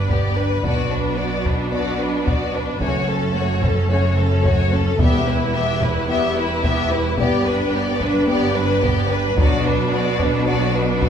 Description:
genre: cinematic, epic orchestral film score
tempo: 110 BPM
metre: 4/4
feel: straight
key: unclear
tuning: A4 = 437 Hz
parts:
  - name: warm symphonic violin section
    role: melody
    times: 0.0-11.1 s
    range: A4 to E5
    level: -24 LUFS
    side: left 3 dB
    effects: none
  - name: clear symphonic violin section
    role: second line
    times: 0.0-11.1 s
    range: D4 to B4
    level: -26 LUFS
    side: left 2 dB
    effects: none
  - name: rich symphonic viola section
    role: accompaniment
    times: 0.0-11.1 s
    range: A3 to E4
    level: -26 LUFS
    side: right 2 dB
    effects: none
  - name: rich studio double bass section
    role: bass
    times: 0.0-11.1 s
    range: E1 to B1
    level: -25 LUFS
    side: right 3 dB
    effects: none
  - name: rich symphonic cello section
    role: bass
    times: 0.0-11.1 s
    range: E2 to B2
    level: -24 LUFS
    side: right 1 dB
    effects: none
  - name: taiko ensemble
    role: drums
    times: 0.1-11.1 s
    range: none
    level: -23 LUFS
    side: equal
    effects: none
  - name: mellow French horn section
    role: sustained chords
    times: 0.6-10.7 s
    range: F#3 to D4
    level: -27 LUFS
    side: left 2 dB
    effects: none
  - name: timpani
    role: percussion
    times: 5.0-5.8, 9.4-10.2 s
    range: E2 to B2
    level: -28 LUFS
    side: left 3 dB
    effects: none
room: wet recital hall reverb, RT60 1.5 s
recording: recorded in a church or concert hall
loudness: -17 LUFS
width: side -8 dB against mid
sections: 0.0-11.1 A section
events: none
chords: 0.0 G; 0.6 Bm; 2.8 F#m; 5.0 Em; 7.2 G; 9.4 Bm

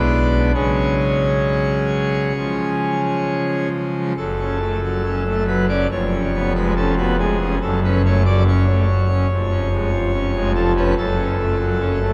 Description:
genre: classical, chorale-style piece for pipe organ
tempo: 66-72 BPM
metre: 4/4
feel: rubato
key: F# minor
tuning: A4 = 440 Hz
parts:
  - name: pipe organ, full organ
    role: solo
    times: 0.0-12.1 s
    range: E#1 to D5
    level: -19 LUFS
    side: equal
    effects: none
room: wet cathedral reverb, RT60 5.5 s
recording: dark, warm production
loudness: -19 LUFS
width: mono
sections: 0.0-4.2 A section; 4.2-12.1 B section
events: none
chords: 0.0 G#dim/B; 0.6 C#sus4; 2.4 C#; 4.2 F#m; 5.9 C#7/E#; 7.6 F#m; 9.3 C#/E#; 11.0 F#m

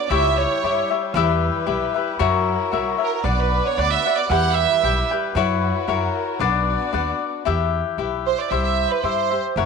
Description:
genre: mexican folk, mariachi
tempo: 114 BPM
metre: 2/4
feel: straight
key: B minor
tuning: A4 = 441 Hz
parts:
  - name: clear studio violin section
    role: melody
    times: 0.0-0.9, 3.0-5.1, 8.3-9.4 s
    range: A#4 to F#5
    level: -21 LUFS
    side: right 12 dB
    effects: none
  - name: cavaquinho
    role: accompaniment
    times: 0.0-9.7 s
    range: D4 to G5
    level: -22 LUFS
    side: left 11 dB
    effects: none
  - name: rich chamber violin section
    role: sustained chords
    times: 0.0-7.4 s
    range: G3 to D5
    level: -30 LUFS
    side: right 2 dB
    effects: none
  - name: upright bass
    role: bass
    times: 0.1-9.7 s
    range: F#1 to G2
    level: -24 LUFS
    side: right 1 dB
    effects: none
room: moderate echo chamber reverb, RT60 1.7 s, small room ambience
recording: 1960s-style stereo with parts hard left and right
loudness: -18 LUFS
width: side -5 dB against mid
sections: 0.0-7.5 A section; 7.5-9.7 B section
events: none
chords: 0.1 C#dim; 1.1 Em; 2.2 F#7; 3.2 Bm; 4.3 Em; 5.4 F#7sus4; 5.9 F#7; 6.4 Bm; 7.5 Em; 8.5 C

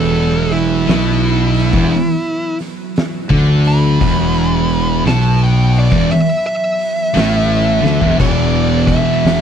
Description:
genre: stoner and doom metal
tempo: 57 BPM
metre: 4/4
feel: swing 65% on 8ths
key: unclear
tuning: A4 = 437 Hz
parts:
  - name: fuzz lead guitar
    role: melody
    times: 0.0-9.4 s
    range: E4 to B5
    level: -19 LUFS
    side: right 1 dB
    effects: distortion
  - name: organ-like drone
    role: sustained chords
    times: 0.0-9.4 s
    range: E3 to B3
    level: -28 LUFS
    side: right 2 dB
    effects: none
  - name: heavy high-gain guitar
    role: riff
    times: 0.0-9.4 s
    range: E2 to E3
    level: -21 LUFS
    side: equal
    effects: distortion
  - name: thick fuzz guitar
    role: riff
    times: 0.0-9.4 s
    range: E2 to E3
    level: -18 LUFS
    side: left 10 dB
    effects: distortion
  - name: thick fuzz guitar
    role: riff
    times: 0.0-9.4 s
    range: E2 to E3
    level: -17 LUFS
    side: right 8 dB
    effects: distortion
  - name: fuzz fingered electric bass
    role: bass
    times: 0.0-9.4 s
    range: E1 to D2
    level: -18 LUFS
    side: equal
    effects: overdrive
  - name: oversized low-tuned drum kit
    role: drums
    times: 0.5-9.4 s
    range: crash cymbal, hi-hat, kick drum, snare drum, toms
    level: -20 LUFS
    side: equal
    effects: none
room: light reverb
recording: dry, close 1970s-style studio recording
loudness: -12 LUFS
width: side -8 dB against mid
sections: 0.0-8.2 A section; 8.2-9.4 B section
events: lead electric guitar solo 0.0-8.2; drum fill 7.7-8.2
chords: 0.0 E5

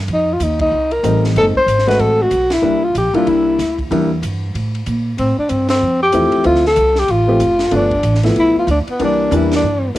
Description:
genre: jazz, small-group swing and bop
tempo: 188 BPM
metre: 4/4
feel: swing 61% on 8ths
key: C mixolydian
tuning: A4 = 440 Hz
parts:
  - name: upright bass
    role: bass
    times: 0.0-10.0 s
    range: F1 to D3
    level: -19 LUFS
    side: right 1 dB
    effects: none
  - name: breathy tenor saxophone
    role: melody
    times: 0.1-9.9 s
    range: B3 to C5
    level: -15 LUFS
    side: left 1 dB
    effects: cassette tape
  - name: compact cocktail drum kit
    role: drums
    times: 0.1-10.0 s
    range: hi-hat, kick drum, ride cymbal, snare drum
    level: -28 LUFS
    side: right 1 dB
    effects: none
  - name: warm upright piano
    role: accompaniment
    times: 1.0-4.1, 6.1-10.0 s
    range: E3 to G4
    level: -18 LUFS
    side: left 1 dB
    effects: cassette tape
room: moderate studio reverb, RT60 0.6 s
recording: home recording on cassette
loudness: -13 LUFS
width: side -15 dB against mid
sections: 0.0-10.0 A section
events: band accent 0.6, 2.5, 5.7, 9.5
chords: 0.1 F7; 1.4 F#dim7; 2.6 C7; 3.9 Em7b5; 4.5 N.C.; 5.2 Dm7; 7.7 G7; 9.0 C7

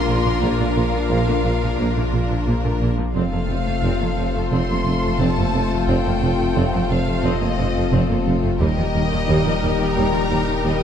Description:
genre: cinematic, hybrid orchestral and electronic film score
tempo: 88 BPM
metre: 4/4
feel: straight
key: unclear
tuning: A4 = 440 Hz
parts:
  - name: warm symphonic violin section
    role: melody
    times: 0.0-10.8 s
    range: Eb5 to C6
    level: -28 LUFS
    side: left 3 dB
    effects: none
  - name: clear studio violin section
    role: second line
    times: 0.0-10.8 s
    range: F4 to Bb4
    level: -29 LUFS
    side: left 3 dB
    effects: none
  - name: warm symphonic viola section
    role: accompaniment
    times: 0.0-10.8 s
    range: Eb3 to Eb4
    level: -27 LUFS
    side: right 1 dB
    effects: none
  - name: chorused pulse-width pad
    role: sustained chords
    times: 0.0-10.8 s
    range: Eb3 to C5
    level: -27 LUFS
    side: left 4 dB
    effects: none
  - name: mellow French horn section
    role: sustained chords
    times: 0.0-10.8 s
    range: Bb3 to G4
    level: -28 LUFS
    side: left 5 dB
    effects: none
  - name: warm trombone section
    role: sustained chords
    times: 0.0-10.8 s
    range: Bb2 to Bb3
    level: -30 LUFS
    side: right 4 dB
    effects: none
  - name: saturated sub bass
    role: bass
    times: 0.0-10.8 s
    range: Eb1 to Bb1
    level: -26 LUFS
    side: left 1 dB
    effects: none
  - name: rich symphonic cello section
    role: bass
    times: 0.1-10.7 s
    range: Eb2 to Bb2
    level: -26 LUFS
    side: right 2 dB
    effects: none
  - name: rich symphonic double bass section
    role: bass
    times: 0.1-10.7 s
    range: F1 to Eb2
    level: -26 LUFS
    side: right 3 dB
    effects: none
  - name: warm tuba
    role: bass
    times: 0.1-10.7 s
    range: F1 to Eb2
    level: -28 LUFS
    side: right 3 dB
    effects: none
room: moderate scoring stage reverb, RT60 1.9 s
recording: dark, warm production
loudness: -17 LUFS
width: side -8 dB against mid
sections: 0.0-10.8 A section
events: none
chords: 0.0 Bb; 3.1 F; 8.6 Eb

